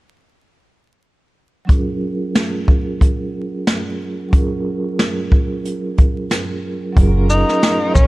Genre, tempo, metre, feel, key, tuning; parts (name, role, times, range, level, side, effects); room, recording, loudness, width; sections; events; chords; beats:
hip hop, boom-bap hip-hop; 91 BPM; 4/4; swing 57% on 16ths; F# major; A4 = 440 Hz
vibraphone with soft mallets; accompaniment; 1.6-8.1 s; F#3 to A#4; -22 LUFS; right 2 dB; high-pass filter, low-pass filter
jazz brush drum kit; drums; 1.7-8.1 s; hi-hat, kick drum, shaker, snare drum; -15 LUFS; equal
warm studio string section; sustained chords; 7.0-8.1 s; F#3 to A#4; -28 LUFS; left 2 dB; high-pass filter, low-pass filter
deep dub fingered electric bass; bass; 7.0-8.1 s; F#1 to A#1; -14 LUFS; equal
breathy tenor saxophone; melody; 7.3-8.1 s; C#4 to D#4; -16 LUFS; left 1 dB; high-pass filter, low-pass filter
studio reverb; vinyl crackle; -15 LUFS; side -19 dB against mid
1.7-7.0 A section; 7.0-8.1 B section
1.7 F#maj7
| 1.69 2.35 3.01 3.67 | 4.33 4.99 5.65 6.31 | 6.97 7.63